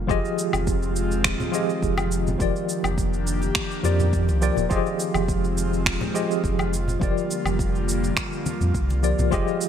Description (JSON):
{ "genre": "sunset chillout", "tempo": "104 BPM", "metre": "4/4", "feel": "straight", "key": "F dorian", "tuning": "A4 = 441 Hz", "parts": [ { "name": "barky tine electric piano", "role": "accompaniment", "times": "0.0-9.7 s", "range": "F3 to Eb5", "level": "-26 LUFS", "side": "moving between left 5 dB and right 5 dB", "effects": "medium stereo tremolo, auto-pan, ping-pong delay" }, { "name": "airy breathy pad", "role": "sustained chords", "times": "0.0-9.7 s", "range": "D3 to G4", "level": "-30 LUFS", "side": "left 1 dB", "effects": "chorus" }, { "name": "warm sub bass", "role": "bass", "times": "0.0-9.4 s", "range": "Eb1 to F2", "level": "-25 LUFS", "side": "equal", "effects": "tube saturation" }, { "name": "electronic kick drum", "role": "drums", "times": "0.1-9.4 s", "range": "none", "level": "-28 LUFS", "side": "equal", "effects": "small room ambience" }, { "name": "electronic shaker, woodblock and finger snaps", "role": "drums", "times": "0.1-9.7 s", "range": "none", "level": "-27 LUFS", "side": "right 1 dB", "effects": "low-pass filter on perc, small room ambience, low-pass filter on snare" }, { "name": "congas", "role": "percussion", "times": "0.5-9.3 s", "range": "none", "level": "-33 LUFS", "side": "left 1 dB", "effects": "none" } ], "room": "light reverb", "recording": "bright 1980s-style digital production", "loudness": "-21 LUFS", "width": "side -9 dB against mid", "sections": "0.1-9.7 A section", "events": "none", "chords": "0.1 Fm7; 2.4 Ebmaj7/F; 4.7 Fm7; 6.7 Gm7/F" }